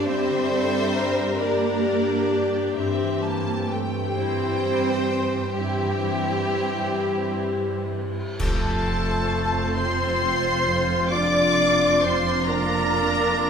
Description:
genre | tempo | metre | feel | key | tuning
cinematic, emotional film score for orchestra | 44 BPM (dotted quarters) | 6/8 | rubato | F major | A4 = 440 Hz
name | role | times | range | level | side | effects
rich studio violin section | melody | 0.0-13.5 s | D5 to D6 | -28 LUFS | left 2 dB | none
rich studio violin section | second line | 0.0-13.5 s | G4 to D5 | -28 LUFS | equal | none
rich studio viola section | accompaniment | 0.0-13.5 s | G3 to Bb4 | -30 LUFS | right 2 dB | none
mellow French horn section | sustained chords | 0.0-13.5 s | E3 to D4 | -29 LUFS | left 2 dB | none
concert harp | arpeggios | 0.0-13.5 s | F2 to E5 | -29 LUFS | left 7 dB | none
warm studio cello section | bass | 0.0-13.5 s | F2 to C4 | -30 LUFS | right 4 dB | none
warm studio double bass section | bass | 0.0-13.5 s | F1 to G2 | -31 LUFS | right 4 dB | none
cymbal swell, clash cymbals and concert bass drum | percussion | 5.6-10.2 s | none | -31 LUFS | equal | none
silver concert flute | second line | 8.4-13.5 s | A4 to D5 | -29 LUFS | left 1 dB | none
warm clarinet | second line | 8.4-13.5 s | F4 | -33 LUFS | left 5 dB | none
warm oboe | second line | 8.4-13.5 s | C5 to D5 | -29 LUFS | right 3 dB | none
room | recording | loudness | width
wet scoring stage reverb, RT60 1.7 s | minimal, uncompressed stereo recording | -20 LUFS | side -7 dB against mid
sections
0.0-8.4 A section; 8.4-13.5 B section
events
band accent 8.4-9.3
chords
0.0 Gm; 2.8 C/G; 8.4 F; 11.1 Bb/F

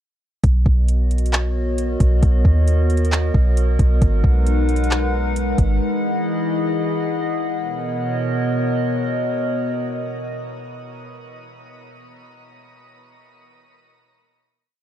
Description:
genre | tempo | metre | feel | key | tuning
hip hop, atmospheric cloud-rap | 134 BPM | 4/4 | half-time | B major | A4 = 435 Hz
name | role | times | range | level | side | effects
warbly tape-like pad | sustained chords | 0.8-11.6 s | B2 to F#5 | -22 LUFS | left 1 dB | chorus, built-in reverb, sidechain pumping
soft 808-style bass | bass | 0.4-5.8 s | G#1 to D#2 | -17 LUFS | equal | none
smooth R&B drum kit | drums | 0.4-5.7 s | handclaps, hi-hat, kick drum | -18 LUFS | equal | overdrive
room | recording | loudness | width
little or no reverb | dark, warm production | -17 LUFS | side -11 dB against mid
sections
0.4-7.6 verse; 7.6-11.2 final chord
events
none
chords
0.4 Bmaj9; 4.0 G#m7; 5.8 Emaj7; 7.6 Bmaj9

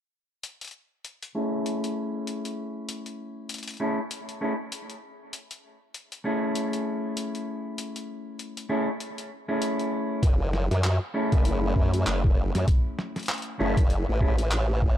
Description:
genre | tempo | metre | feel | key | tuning
glitch hop | 98 BPM | 4/4 | swing 58% on 16ths | unclear | A4 = 442 Hz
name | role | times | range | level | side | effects
boom bap sampler-style drum kit | drums | 0.4-14.7 s | handclaps, hi-hat, snare drum | -34 LUFS | left 1 dB | studio reverb
mellow electric guitar | stabs | 1.3-14.3 s | A3 to G#4 | -30 LUFS | equal | vintage 12-bit sampler grit, sidechain pumping, low-pass filter, tape echo
formant-sweep wobble bass | bass | 10.2-15.0 s | F#1 to F#2 | -25 LUFS | equal | chorus
electronic kick drum | drums | 10.2-15.0 s | none | -22 LUFS | equal | studio reverb
room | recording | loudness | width
little or no reverb | dark, warm production | -25 LUFS | side -11 dB against mid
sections
0.4-10.2 A section; 10.2-15.0 B section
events
filter sweep on clean electric guitar 0.4-10.2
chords
0.4 Amaj7; 10.2 F#m7

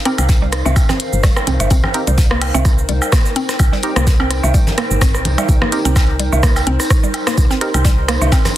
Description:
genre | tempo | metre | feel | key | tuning
minimal techno | 127 BPM | 4/4 | swing 55% on 16ths | C minor | A4 = 440 Hz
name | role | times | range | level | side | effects
warbly tape-like pad | texture | 0.0-8.6 s | Eb4 to C6 | -24 LUFS | equal | chorus, built-in reverb, sidechain pumping
mallet-like synth pluck | riff | 0.1-8.4 s | G3 to C4 | -23 LUFS | equal | chorus, sidechain pumping, digital delay
wavetable chord stab | stabs | 0.1-7.7 s | C4 to Bb4 | -25 LUFS | right 2 dB | dub echo
minimal click drum kit | drums | 0.1-8.5 s | cabasa, hi-hat, rim click | -23 LUFS | equal | soft clipping on snare
soft brush drum kit | drums | 0.1-8.6 s | hi-hat, snare drum, tambourine | -29 LUFS | left 1 dB | high-pass filter on hats, soft clipping on snare, high-pass filter on snare, high-pass filter on perc, high-pass filter on room
electronic rim click, woodblock and congas | percussion | 0.1-8.5 s | none | -21 LUFS | right 2 dB | soft clipping on snare
woody FM bass | bass | 0.2-8.3 s | G1 to C2 | -17 LUFS | equal | sidechain pumping
electronic kick drum | drums | 0.3-8.4 s | none | -14 LUFS | equal | none
room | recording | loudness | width
light reverb | dense, heavily limited modern master | -12 LUFS | side -13 dB against mid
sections
0.0-8.6 A section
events
none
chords
0.0 Cm7

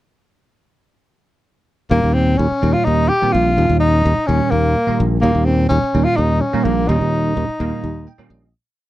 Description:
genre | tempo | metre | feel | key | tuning
electric jazz fusion | 253 BPM (eighths) | 7/8 | straight | Eb mixolydian | A4 = 440 Hz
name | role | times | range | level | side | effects
breathy tenor saxophone | melody | 1.9-8.3 s | Bb3 to G4 | -18 LUFS | left 1 dB | none
bell-like tine electric piano | accompaniment | 1.9-8.5 s | Bb2 to G5 | -21 LUFS | right 3 dB | ensemble chorus
modern bright fingered electric bass | bass | 1.9-8.5 s | Bb1 to Eb2 | -17 LUFS | equal | none
room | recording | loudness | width
light reverb | dry, close 1970s-style studio recording | -14 LUFS | side -15 dB against mid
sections
1.9-8.5 groove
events
fade-out 6.9-8.5; tine electric piano fill 7.8-8.5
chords
1.9 Eb7

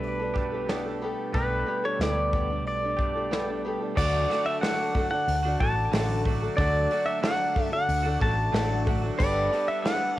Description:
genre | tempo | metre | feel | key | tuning
folk rock and heartland rock | 92 BPM | 4/4 | straight | D major | A4 = 440 Hz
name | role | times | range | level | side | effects
pedal steel guitar | melody | 0.0-10.2 s | B4 to A5 | -28 LUFS | equal | cassette tape, tape echo
picked old ladder-braced acoustic guitar | accompaniment | 0.0-10.2 s | D3 to A4 | -32 LUFS | left 3 dB | cassette tape
twelve-string electric guitar | riff | 0.0-10.2 s | B2 to A4 | -35 LUFS | right 9 dB | cassette tape
hollow-body short-scale fingered electric bass | bass | 0.0-9.5 s | G1 to D2 | -30 LUFS | equal | none
soft brush drum kit | drums | 0.0-10.0 s | crash cymbal, hi-hat, kick drum, snare drum | -30 LUFS | equal | cassette tape
mellow tonewheel organ | sustained chords | 4.0-10.2 s | F#4 to D6 | -40 LUFS | equal | slow rotary speaker, cassette tape
room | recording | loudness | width
small room ambience | home recording on cassette | -24 LUFS | side -15 dB against mid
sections
0.0-4.0 A section; 4.0-10.2 B section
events
none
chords
0.0 Gadd9/B; 4.0 D; 9.2 Gadd9

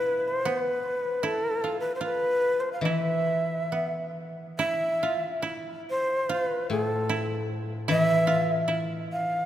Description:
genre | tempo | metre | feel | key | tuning
japanese traditional, Japanese chamber music | 65-79 BPM | 4/4 | rubato | E miyako bushi | A4 = 440 Hz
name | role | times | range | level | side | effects
breathy bright shakuhachi | melody | 0.0-9.5 s | A4 to F5 | -26 LUFS | equal | none
koto | second line | 0.0-9.5 s | B3 to F4 | -33 LUFS | right 3 dB | none
koto | accompaniment | 0.0-9.5 s | A2 to E3 | -30 LUFS | left 3 dB | none
room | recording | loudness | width
wet cathedral reverb, RT60 4.6 s | none | -25 LUFS | side -11 dB against mid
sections
0.0-4.6 A section; 4.6-9.5 B section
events
none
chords
none

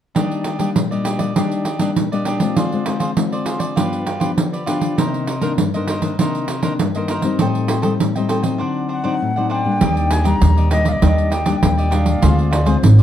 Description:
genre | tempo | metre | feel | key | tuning
samba and choro | 99 BPM | 4/4 | straight | Eb major | A4 = 444 Hz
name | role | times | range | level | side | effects
cavaquinho | accompaniment | 0.1-13.0 s | D4 to G5 | -25 LUFS | right 2 dB | none
nylon-string guitar | accompaniment | 0.2-13.0 s | G2 to F4 | -21 LUFS | left 4 dB | none
pandeiro | percussion | 0.2-13.0 s | none | -20 LUFS | right 3 dB | none
wooden flute | melody | 8.9-13.0 s | C5 to Bb5 | -22 LUFS | left 2 dB | slapback echo, plate reverb
upright bass | bass | 9.8-13.0 s | Ab1 to Eb2 | -14 LUFS | equal | none
room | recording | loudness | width
moderate large studio reverb, RT60 0.8 s | dark, warm production | -16 LUFS | side -10 dB against mid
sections
0.2-9.8 A section; 9.8-13.0 B section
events
none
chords
0.2 Ebmaj7; 2.6 Dm7b5; 3.8 G7; 5.0 Cm9; 7.4 Am7b5; 8.6 D7b9; 9.8 Ebmaj7; 12.2 Dm7b5

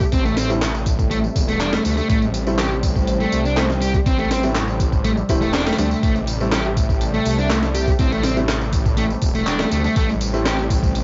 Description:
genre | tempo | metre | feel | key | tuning
breakbeat, breaks | 122 BPM | 4/4 | straight | A minor pentatonic | A4 = 440 Hz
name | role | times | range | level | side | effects
phased analog pad | sustained chords | 0.0-11.0 s | C3 to C4 | -28 LUFS | equal | phaser, chorus, vintage 12-bit sampler grit, sidechain pumping, cassette tape
detuned saw bass | bass | 0.0-11.0 s | E1 to D2 | -26 LUFS | equal | none
breakbeat sampler-style drum kit | drums | 0.0-11.0 s | hi-hat, kick drum, snare drum | -24 LUFS | equal | cassette tape
electronic tambourine and handclaps | drums | 0.0-11.0 s | none | -31 LUFS | equal | cassette tape
thick fuzz guitar | riff | 0.1-10.6 s | A3 to G4 | -25 LUFS | equal | distortion, tube saturation, cassette tape, analog delay
bright grand piano | stabs | 0.5-10.5 s | G3 to E4 | -28 LUFS | equal | cassette tape, analog delay
room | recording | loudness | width
light reverb, digital ambience | home recording on cassette, vinyl crackle, nothing above 7.6 kHz | -19 LUFS | mono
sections
0.0-11.0 A section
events
none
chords
0.0 Am7

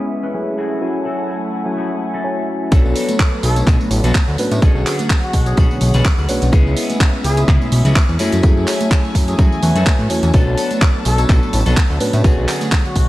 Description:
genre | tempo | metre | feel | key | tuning
filtered disco house | 126 BPM | 4/4 | swing 55% on 16ths | B dorian | A4 = 438 Hz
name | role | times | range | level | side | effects
tine electric piano | accompaniment | 0.0-13.1 s | D3 to G#5 | -21 LUFS | equal | phaser, sidechain pumping, low-pass filter, dub echo
dark studio string section | sustained chords | 0.0-13.1 s | D3 to A5 | -28 LUFS | left 1 dB | sidechain pumping, low-pass filter
clean electric guitar | riff | 0.0-12.7 s | A3 to B4 | -27 LUFS | left 5 dB | vintage 12-bit sampler grit, sidechain pumping, low-pass filter, dub echo
fat analog bass | bass | 2.7-13.1 s | A1 to A2 | -17 LUFS | equal | sidechain pumping, low-pass filter
electronic kick drum | drums | 2.7-13.1 s | none | -13 LUFS | equal | none
house drum kit | drums | 2.7-13.1 s | handclaps, hi-hat, tambourine | -23 LUFS | right 1 dB | sidechain pumping on hats, sidechain pumping on perc
tambourine and congas | percussion | 2.7-12.9 s | none | -27 LUFS | right 2 dB | sidechain pumping on perc, low-pass filter on perc, dub echo
dark trumpet section | melody | 3.4-7.4, 11.1-13.1 s | F#4 to A4 | -28 LUFS | left 1 dB | vintage 12-bit sampler grit, sidechain pumping, low-pass filter, dub echo
room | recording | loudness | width
light reverb, digital ambience | echo-heavy mix | -13 LUFS | side -16 dB against mid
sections
0.0-2.7 A section; 2.7-13.1 B section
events
filter sweep 0.0-2.7; drop 2.7-13.1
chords
0.0 C#m7; 0.6 F#m9; 2.7 Bm7; 4.6 Bm69; 6.5 C#m7; 8.2 F#m9; 10.3 Bm7; 12.2 Bm69

